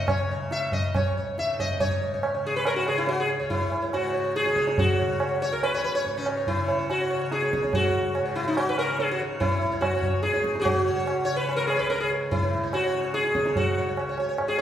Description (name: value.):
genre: indian classical, Hindustani.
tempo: 143 BPM.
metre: 7/4.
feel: straight.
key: unclear.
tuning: A4 = 440 Hz.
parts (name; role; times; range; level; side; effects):
sitar; melody; 0.0-14.6 s; C#4 to E5; -25 LUFS; equal; none.
tanpura; drone; 0.0-14.6 s; C#2 to C#3; -35 LUFS; left 2 dB; none.
tabla; percussion; 0.1-14.6 s; none; -28 LUFS; right 1 dB; none.
room: wet recital hall reverb, RT60 1.4 s.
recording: heard from further back in the room.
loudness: -23 LUFS.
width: side -10 dB against mid.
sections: 0.0-1.8 A section; 1.8-14.6 B section.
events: speeding up 0.0-14.6.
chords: none.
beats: 0.09 0.52 0.94 1.37 | 1.80 2.23 2.65 3.08 3.51 3.93 4.36 | 4.78 5.20 5.62 6.05 6.47 6.89 7.31 | 7.73 8.15 8.57 8.99 9.41 9.82 10.24 | 10.66 11.07 11.49 11.90 12.32 12.73 13.15 | 13.56 13.97 14.38.